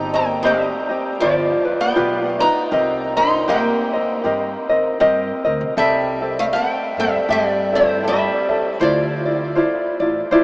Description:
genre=Hawaiian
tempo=79 BPM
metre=4/4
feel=swing 59% on 8ths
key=C minor, C major from 5.8 s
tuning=A4 = 440 Hz
part: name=lap resonator guitar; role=melody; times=0.0-9.5 s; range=C5 to C6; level=-21 LUFS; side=equal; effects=none
part: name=picked swing-style acoustic guitar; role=second line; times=0.0-9.5 s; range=E3 to Eb4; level=-23 LUFS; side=right 1 dB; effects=none
part: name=tenor ukulele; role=accompaniment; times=0.0-10.4 s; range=C4 to E5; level=-18 LUFS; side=equal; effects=none
part: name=upright bass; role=bass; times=0.0-10.4 s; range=G1 to G2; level=-30 LUFS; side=equal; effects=none
room=wet huge ambient reverb, RT60 8.0 s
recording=in a vast, echoing space, small speaker sound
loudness=-16 LUFS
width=side -25 dB against mid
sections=0.0-5.8 A section; 5.8-10.4 B section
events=none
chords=0.0 Cm/G; 1.2 G7; 2.7 Cm7; 5.8 C6; 8.8 Dm9

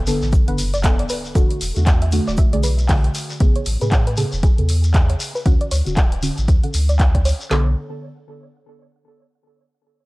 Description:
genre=deep house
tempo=117 BPM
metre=4/4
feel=swing 59% on 16ths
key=B dorian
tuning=A4 = 437 Hz
part: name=warm sub bass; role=bass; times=0.0-7.7 s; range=D1 to A2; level=-19 LUFS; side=equal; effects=sidechain pumping
part: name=sub drop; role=sound effects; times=0.0-1.4 s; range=none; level=-32 LUFS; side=equal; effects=none
part: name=deep mellow chord stab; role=stabs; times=0.1-7.7 s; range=C#3 to B4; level=-25 LUFS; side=equal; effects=chorus, sidechain pumping, analog delay
part: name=deep house drum kit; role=drums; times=0.1-7.4 s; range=handclaps, hi-hat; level=-28 LUFS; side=equal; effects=none
part: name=jazz brush drum kit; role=drums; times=0.1-3.4 s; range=hi-hat, shaker, snare drum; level=-38 LUFS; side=right 1 dB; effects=none
part: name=shekere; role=percussion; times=0.1-7.5 s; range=none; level=-32 LUFS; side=left 2 dB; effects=none
part: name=deep house drum kit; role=drums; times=0.3-7.7 s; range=handclaps, kick drum, snare drum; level=-16 LUFS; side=equal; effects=none
part: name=soft round pluck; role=arpeggios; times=0.5-7.7 s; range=G#4 to F#5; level=-30 LUFS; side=right 1 dB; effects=chorus, sidechain pumping, analog delay
room=little or no reverb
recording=dry, gritty hardware recording, cassette tape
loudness=-15 LUFS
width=side -22 dB against mid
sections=0.0-7.5 A section; 7.5-9.6 B section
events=impact 0.0-1.4; filter sweep on synth stab 0.0-7.5; filter sweep on synth arpeggio sound 0.0-7.5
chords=0.0 Bm7; 1.4 E9sus4; 3.4 Amaj9; 5.5 Dmaj7; 7.5 Bm7

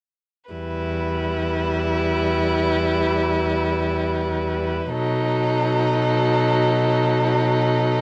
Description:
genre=classical, slow romantic movement for string quartet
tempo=free time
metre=none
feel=none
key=E minor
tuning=A4 = 440 Hz
part: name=rich violin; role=melody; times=0.5-8.0 s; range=A4 to B4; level=-30 LUFS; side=equal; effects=none
part: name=rich violin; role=second line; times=0.5-8.0 s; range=D#4 to E4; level=-26 LUFS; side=equal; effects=none
part: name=warm viola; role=accompaniment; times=0.5-8.0 s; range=F#3 to G3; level=-27 LUFS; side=equal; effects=none
part: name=rich cello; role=bass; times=0.5-8.0 s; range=E2 to B2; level=-26 LUFS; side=equal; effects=none
room=light reverb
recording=worn, warbling old tape, cassette tape, warbly pitch drift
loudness=-21 LUFS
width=mono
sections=0.5-8.0 A section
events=none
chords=0.5 Em; 4.9 B7

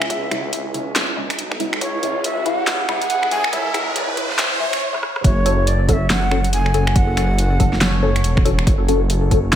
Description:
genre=deep dubstep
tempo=140 BPM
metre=4/4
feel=swing 61% on 16ths, half-time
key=F# minor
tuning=A4 = 440 Hz
part: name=breathy reedy shakuhachi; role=melody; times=0.0-8.5 s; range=C#5 to G#5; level=-24 LUFS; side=right 1 dB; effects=dub echo
part: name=dark detuned saw bass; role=bass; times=0.0-9.6 s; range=E1 to C#2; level=-21 LUFS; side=equal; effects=high-pass filter
part: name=deep house drum kit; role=drums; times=0.0-9.6 s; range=finger snaps, handclaps, hi-hat, rim click, snare drum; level=-22 LUFS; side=equal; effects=high-pass filter on hats, high-pass filter on snare
part: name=riser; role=sound effects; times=0.2-4.8 s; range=none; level=-27 LUFS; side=right 2 dB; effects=none
part: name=electronic kick drum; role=drums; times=0.1-9.4 s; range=none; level=-18 LUFS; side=equal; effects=overdrive, high-pass filter on kick
part: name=filtered dub chord stab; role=stabs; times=0.3-9.4 s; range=C#3 to A4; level=-24 LUFS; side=left 3 dB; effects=phaser, dub echo
room=moderate plate reverb, RT60 1.6 s, digital ambience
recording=dreamy mix soaked in reverb, high-pass filter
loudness=-16 LUFS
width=side -10 dB against mid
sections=0.0-5.2 A section; 5.2-9.6 B section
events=build-up 0.0-5.2; filter sweep on synth stab 0.0-5.2; riser 0.2-4.8; stop 4.8-5.2; drum fill 4.9-5.2; drop 5.2-9.6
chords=0.0 C#m; 5.2 F#m

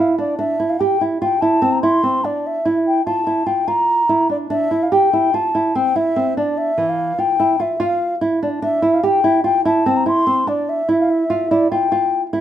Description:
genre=contemporary instrumental, contemporary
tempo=146 BPM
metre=5/4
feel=straight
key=G dorian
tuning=A4 = 440 Hz
part: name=mellow baroque flute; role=melody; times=0.0-12.2 s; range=D5 to C6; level=-18 LUFS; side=left 2 dB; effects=none
part: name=nylon-string guitar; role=arpeggios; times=0.0-12.4 s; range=E3 to G4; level=-18 LUFS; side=right 2 dB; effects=none
room=moderate studio reverb, RT60 0.7 s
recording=none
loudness=-15 LUFS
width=side -11 dB against mid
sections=0.0-12.4 A section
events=none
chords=0.4 Cadd9; 2.4 Dmadd9; 4.5 Am7; 6.6 G5; 8.6 Cadd9; 10.7 G5

